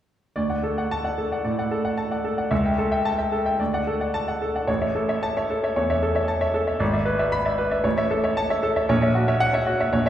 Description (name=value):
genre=classical, virtuoso piano study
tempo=113 BPM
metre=4/4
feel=rubato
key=D major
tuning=A4 = 440 Hz
part: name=clear grand piano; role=solo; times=0.4-10.1 s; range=G#1 to B5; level=-21 LUFS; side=equal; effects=none
room=wet recital hall reverb, RT60 1.6 s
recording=heard from further back in the room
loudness=-21 LUFS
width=side -11 dB against mid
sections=0.4-10.1 A section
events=none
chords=0.4 D; 2.5 A7/C#; 3.6 D; 4.7 A; 6.8 E7/G#; 7.8 A; 8.9 F#7/A#